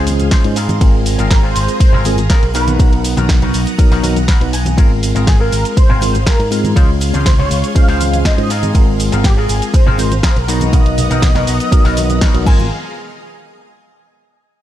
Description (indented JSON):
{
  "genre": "nu-disco, nu disco",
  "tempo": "121 BPM",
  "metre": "4/4",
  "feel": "straight",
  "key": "Ab major",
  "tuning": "A4 = 440 Hz",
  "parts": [
    { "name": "wide unison lead", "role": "melody", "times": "0.0-12.7 s", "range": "G4 to Ab5", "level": "-22 LUFS", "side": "right 1 dB", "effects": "ensemble chorus, tape echo" },
    { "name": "tine electric piano", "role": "accompaniment", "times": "0.0-12.7 s", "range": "F#3 to Db5", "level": "-20 LUFS", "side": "equal", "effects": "overdrive, medium stereo tremolo, sidechain pumping, slapback echo" },
    { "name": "string machine, full ensemble", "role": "sustained chords", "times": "0.0-12.7 s", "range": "B3 to D#6", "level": "-25 LUFS", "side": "equal", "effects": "ensemble chorus, sidechain pumping" },
    { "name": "electric guitar with an envelope filter", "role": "riff", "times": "0.0-12.7 s", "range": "B3 to Ab5", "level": "-25 LUFS", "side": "left 4 dB", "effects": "wide subtle chorus, slapback echo" },
    { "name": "picked electric bass with an envelope filter", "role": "bass", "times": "0.0-12.7 s", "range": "Ab1 to Ab2", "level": "-17 LUFS", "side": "equal", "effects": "sidechain pumping" },
    { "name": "house drum kit", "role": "drums", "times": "0.1-12.6 s", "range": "crash cymbal, hi-hat, ride cymbal, shaker, snare drum", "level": "-22 LUFS", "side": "equal", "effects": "none" },
    { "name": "maracas and congas", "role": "percussion", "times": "0.1-12.7 s", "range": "none", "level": "-24 LUFS", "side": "right 2 dB", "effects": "none" },
    { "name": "electronic kick drum", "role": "drums", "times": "0.3-12.6 s", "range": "none", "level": "-11 LUFS", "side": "equal", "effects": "none" }
  ],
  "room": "little or no reverb",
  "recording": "none",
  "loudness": "-10 LUFS",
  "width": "side -12 dB against mid",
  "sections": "0.0-12.7 A section; 12.7-14.6 B section",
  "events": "drop 0.0-12.7; clean electric guitar fill 4.0-4.8; band accent 12.2",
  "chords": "0.0 Dbmaj7; 0.6 Ab69; 2.5 Bmaj7; 4.8 Ab69; 6.8 Dbmaj7; 8.5 Ab69; 10.5 Bmaj7; 12.5 Ab69; 12.7 N.C."
}